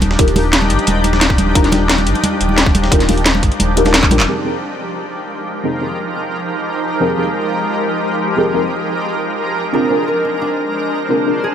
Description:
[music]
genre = liquid drum and bass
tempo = 176 BPM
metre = 4/4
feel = straight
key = F dorian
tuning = A4 = 440 Hz
[part]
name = shimmering ambient pad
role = sustained chords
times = 0.0-11.5 s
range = F3 to C5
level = -19 LUFS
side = equal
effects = chorus, built-in reverb, sidechain pumping
[part]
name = sub bass with octave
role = bass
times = 0.0-4.3 s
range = Eb1 to Bb1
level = -18 LUFS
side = equal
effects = none
[part]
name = drum and bass drum kit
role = drums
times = 0.0-4.3 s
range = handclaps, hi-hat, snare drum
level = -18 LUFS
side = equal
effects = none
[part]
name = dusty soul sampler-style drum kit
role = drums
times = 0.0-4.3 s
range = hi-hat, snare drum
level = -22 LUFS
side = equal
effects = high-pass filter on hats, high-pass filter on snare
[part]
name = congas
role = percussion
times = 0.0-4.2 s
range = none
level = -20 LUFS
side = right 1 dB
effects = none
[part]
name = deep mellow chord stab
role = accompaniment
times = 0.2-11.4 s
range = F3 to Bb4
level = -20 LUFS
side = left 1 dB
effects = chorus, phaser, digital delay
[part]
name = electronic kick drum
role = drums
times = 0.2-4.1 s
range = none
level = -14 LUFS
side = equal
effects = none
[part]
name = concert harp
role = arpeggios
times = 9.7-11.5 s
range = D4 to Bb4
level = -20 LUFS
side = left 1 dB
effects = tape echo
[sound]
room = light reverb, digital ambience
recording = none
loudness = -13 LUFS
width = side -9 dB against mid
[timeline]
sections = 0.0-4.3 A section; 4.3-11.5 B section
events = filter sweep on synth stab 0.0-4.3; drum fill 4.0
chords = 0.0 Ebmaj9; 4.3 Fm11; 9.7 Bb9

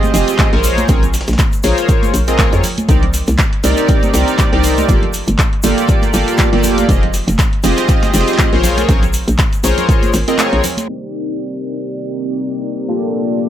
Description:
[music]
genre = deep house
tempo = 120 BPM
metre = 4/4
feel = swing 56% on 16ths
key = unclear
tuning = A4 = 439 Hz
[part]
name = chorused polysynth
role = stabs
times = 0.0-13.5 s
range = Bb3 to Eb5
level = -16 LUFS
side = equal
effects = tape echo
[part]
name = punchy analog drum machine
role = drums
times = 0.0-13.5 s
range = handclaps, hi-hat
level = -22 LUFS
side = equal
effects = low-pass filter on hats, low-pass filter on snare, low-pass filter on room
[part]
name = congas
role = percussion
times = 0.0-10.9 s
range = none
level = -25 LUFS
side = right 2 dB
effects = sidechain pumping on perc
[part]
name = egg shaker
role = percussion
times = 0.0-13.5 s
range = none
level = -27 LUFS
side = left 3 dB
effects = none
[part]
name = hollow knocking FM bass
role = bass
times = 0.1-10.6 s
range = F1 to F2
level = -16 LUFS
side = equal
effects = tube saturation, sidechain pumping
[part]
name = dusty soul sampler-style drum kit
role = drums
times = 0.1-10.9 s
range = hi-hat, snare drum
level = -30 LUFS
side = left 1 dB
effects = none
[part]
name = electronic kick drum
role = drums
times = 0.4-10.0 s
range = none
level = -14 LUFS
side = equal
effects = none
[part]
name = deep dark ambient pad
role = sustained chords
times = 11.7-13.5 s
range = Bb3 to G5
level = -26 LUFS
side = left 1 dB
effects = chorus, built-in reverb, sidechain pumping
[sound]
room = digital ambience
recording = low-pass filter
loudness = -12 LUFS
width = side -11 dB against mid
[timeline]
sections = 0.0-10.9 A section; 10.9-13.5 B section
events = kick drops out 10.4-10.9; filter sweep on analog polysynth 10.9-13.5; filter sweep on ambient pad 10.9-13.5; filter sweep 10.9-13.5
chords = 0.0 Fm9; 0.6 Bbm9; 2.9 Cm9; 4.9 Gm9; 6.9 Fm9; 8.6 Bbm9; 10.9 Cm9; 12.9 Gm9

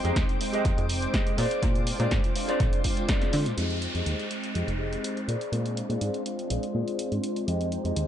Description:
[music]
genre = filtered disco house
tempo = 123 BPM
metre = 4/4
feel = straight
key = F dorian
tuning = A4 = 442 Hz
[part]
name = mellow synth brass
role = accompaniment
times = 0.0-8.1 s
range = Ab3 to G5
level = -32 LUFS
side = equal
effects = chorus, phaser, sidechain pumping, low-pass filter, dub echo
[part]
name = string machine, full ensemble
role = sustained chords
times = 0.0-8.1 s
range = C5 to D6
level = -37 LUFS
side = equal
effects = ensemble chorus, sidechain pumping, low-pass filter
[part]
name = mellow electric guitar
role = riff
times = 0.0-8.1 s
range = G4 to Eb5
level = -33 LUFS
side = left 1 dB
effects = sidechain pumping, low-pass filter
[part]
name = plucky analog bass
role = bass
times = 0.0-8.0 s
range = F1 to D3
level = -29 LUFS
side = equal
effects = sidechain pumping, low-pass filter
[part]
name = punchy analog drum machine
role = drums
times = 0.0-8.1 s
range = hi-hat, snare drum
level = -34 LUFS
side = equal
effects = sidechain pumping on hats, small room reverb, dub echo
[part]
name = tambourine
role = percussion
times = 0.1-3.6 s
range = none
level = -46 LUFS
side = left 2 dB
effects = none
[part]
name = electronic kick drum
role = drums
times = 0.2-3.2 s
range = none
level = -27 LUFS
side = equal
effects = small room reverb
[part]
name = downlifter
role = sound effects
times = 3.6-7.5 s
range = none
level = -37 LUFS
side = equal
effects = none
[sound]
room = light reverb, digital ambience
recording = echo-heavy mix, nothing above 10.4 kHz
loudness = -25 LUFS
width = side -10 dB against mid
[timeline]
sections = 0.0-3.6 A section; 3.6-8.1 B section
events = band accent 3.1; filter sweep 3.6-8.1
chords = 0.0 Fm9; 1.4 Bb9; 3.6 Fm9; 5.3 Bb9; 7.5 Fm9

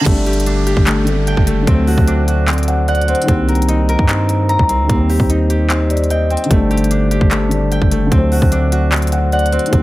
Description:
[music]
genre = hip hop, trap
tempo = 149 BPM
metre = 4/4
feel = half-time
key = G harmonic minor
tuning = A4 = 441 Hz
[part]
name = felt-muted upright piano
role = accompaniment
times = 0.0-9.8 s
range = D3 to G5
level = -18 LUFS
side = left 2 dB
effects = none
[part]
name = concert harp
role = arpeggios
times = 0.0-9.8 s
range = A3 to Bb5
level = -19 LUFS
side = equal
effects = analog delay
[part]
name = reverse cymbal and downlifter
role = sound effects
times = 0.0-3.3 s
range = none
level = -28 LUFS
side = right 4 dB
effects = none
[part]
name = long sustained 808-style bass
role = bass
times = 0.1-9.8 s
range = F#1 to G2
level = -16 LUFS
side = equal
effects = none
[part]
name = trap drum kit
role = drums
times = 0.1-9.8 s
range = crash cymbal, handclaps, hi-hat, kick drum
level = -17 LUFS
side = equal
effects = none
[sound]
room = light reverb, studio reverb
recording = echo-heavy mix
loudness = -12 LUFS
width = side -17 dB against mid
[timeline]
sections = 0.1-9.8 A section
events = none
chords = 0.1 Gsus2; 1.7 D7; 3.3 Cm7; 4.9 Eb6; 6.5 Gsus2; 8.1 D7

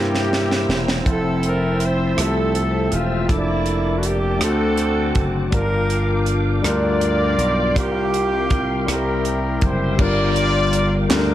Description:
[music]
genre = slow gospel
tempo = 54 BPM (dotted quarters)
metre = 6/8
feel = straight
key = unclear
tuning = A4 = 440 Hz
[part]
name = breathy alto saxophone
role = melody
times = 0.0-9.6 s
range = E4 to D5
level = -25 LUFS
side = right 3 dB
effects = none
[part]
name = warm horn section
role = melody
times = 0.0-11.3 s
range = A3 to E5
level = -24 LUFS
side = left 2 dB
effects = none
[part]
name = barky tine electric piano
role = accompaniment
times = 0.0-11.3 s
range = G2 to D5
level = -24 LUFS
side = left 2 dB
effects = medium stereo tremolo
[part]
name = bright tonewheel organ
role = sustained chords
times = 0.0-11.3 s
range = A4 to E6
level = -30 LUFS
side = right 1 dB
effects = slow rotary speaker, chorus vibrato
[part]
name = gritty slap bass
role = bass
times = 0.0-11.3 s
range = E1 to G2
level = -22 LUFS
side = equal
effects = overdrive
[part]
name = tight funk drum kit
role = drums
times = 0.1-11.3 s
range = crash cymbal, hi-hat, kick drum, rim click, snare drum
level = -22 LUFS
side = right 1 dB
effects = none
[part]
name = group handclap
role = percussion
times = 11.1-11.3 s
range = none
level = -30 LUFS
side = right 4 dB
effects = none
[sound]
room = light reverb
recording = none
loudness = -17 LUFS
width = side -12 dB against mid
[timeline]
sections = 0.0-10.0 A section; 10.0-11.3 B section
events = drum fill 0.0-1.1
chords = 0.0 C7; 1.1 Fmaj7; 3.3 Bbmaj7/F; 4.4 D7; 5.5 Gm7; 7.8 C7sus4; 8.9 C7; 10.0 Gm7

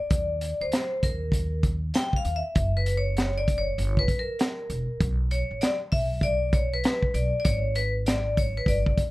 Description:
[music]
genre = hip hop, jazz-hop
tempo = 98 BPM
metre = 4/4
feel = swing 64% on 16ths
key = unclear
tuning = A4 = 441 Hz
[part]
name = vibraphone with hard mallets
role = accompaniment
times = 0.0-9.0 s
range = A#4 to G5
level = -28 LUFS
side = left 1 dB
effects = none
[part]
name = upright bass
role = bass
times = 0.1-8.9 s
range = E1 to D#2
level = -28 LUFS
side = equal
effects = none
[part]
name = crunchy breakbeat drum kit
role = drums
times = 0.1-9.1 s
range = hi-hat, kick drum, snare drum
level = -26 LUFS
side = equal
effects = none
[sound]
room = little or no reverb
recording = none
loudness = -23 LUFS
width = side -18 dB against mid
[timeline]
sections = 0.0-9.1 A section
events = vibraphone solo 0.0-9.1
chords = 0.1 D#5; 2.6 F#7; 5.0 Aadd9 (rootless); 7.5 G#madd11

